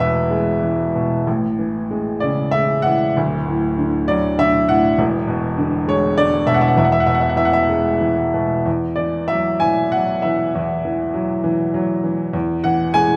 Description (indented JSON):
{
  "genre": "classical, lyrical solo piano",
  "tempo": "90-102 BPM",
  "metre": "3/4",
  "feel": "rubato",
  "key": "unclear",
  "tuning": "A4 = 442 Hz",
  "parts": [
    { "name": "clear baby grand piano", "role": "solo", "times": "0.0-13.2 s", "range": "D1 to G#5", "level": "-18 LUFS", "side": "equal", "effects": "none" }
  ],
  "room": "moderate recital hall reverb, RT60 1.5 s",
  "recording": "dark, warm production",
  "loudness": "-18 LUFS",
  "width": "mono",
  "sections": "0.0-8.7 A section; 8.7-13.2 B section",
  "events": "none",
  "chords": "0.0 E; 1.3 Amaj7; 3.2 D; 5.0 E7; 6.8 Eadd9; 8.7 Esus2; 12.3 E"
}